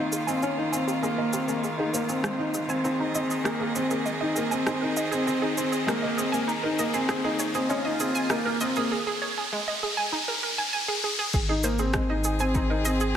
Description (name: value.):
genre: piano and strings electronica.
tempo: 99 BPM.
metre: 4/4.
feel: straight.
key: Ab major.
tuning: A4 = 440 Hz.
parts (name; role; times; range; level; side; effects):
rich string quartet; sustained chords; 0.0-13.2 s; Eb3 to Eb5; -32 LUFS; equal; none.
felt-muted upright piano; riff; 0.0-13.2 s; Bb3 to Eb4; -27 LUFS; equal; tape echo.
round analog bass; bass; 0.0-13.2 s; Eb1 to Ab1; -34 LUFS; equal; sidechain pumping, high-pass filter.
riser; sound effects; 0.7-11.3 s; none; -33 LUFS; equal; none.
analog pluck; arpeggios; 0.1-13.1 s; Ab3 to Ab5; -31 LUFS; right 3 dB; chorus, sidechain pumping, tape echo.
organic electronic drum kit; drums; 0.1-13.1 s; crash cymbal, rim click, shaker; -32 LUFS; equal; none.
electronic kick drum; drums; 11.3-12.7 s; none; -28 LUFS; equal; none.
room: wet lush hall reverb, RT60 1.8 s, digital ambience.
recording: none.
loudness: -24 LUFS.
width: side -9 dB against mid.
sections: 0.0-11.3 A section; 11.3-13.2 B section.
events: build-up 0.0-11.3; filter sweep on synth arpeggio sound 0.0-11.3; riser 0.7-11.3; drop 11.3-13.2.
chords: 0.0 Ebsus2; 1.6 Ab; 6.5 Ebsus2; 11.3 Ab.